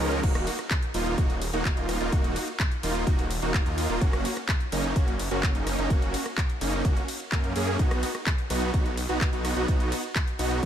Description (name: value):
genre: EDM, festival progressive house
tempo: 127 BPM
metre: 4/4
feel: straight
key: Eb minor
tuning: A4 = 440 Hz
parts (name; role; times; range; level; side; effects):
- supersaw chords; riff; 0.0-10.7 s; F3 to Bb4; -29 LUFS; right 1 dB; cassette tape, sidechain pumping, ping-pong delay
- wide detuned saw bass; bass; 0.0-10.7 s; Eb1 to Gb2; -31 LUFS; equal; chorus, sidechain pumping
- house drum kit; drums; 0.0-10.7 s; crash cymbal, handclaps, hi-hat, ride cymbal, rim click; -33 LUFS; equal; none
- electronic kick drum; drums; 0.2-10.7 s; none; -25 LUFS; equal; none
room: digital ambience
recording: none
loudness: -24 LUFS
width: side -10 dB against mid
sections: 0.0-10.7 A section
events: none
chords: 0.2 Ebm; 4.0 Gb; 7.8 B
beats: | 0.23 0.71 1.18 1.65 | 2.12 2.60 3.07 3.54 | 4.01 4.49 4.96 5.43 | 5.90 6.38 6.85 7.32 | 7.79 8.27 8.74 9.21 | 9.68 10.15 10.63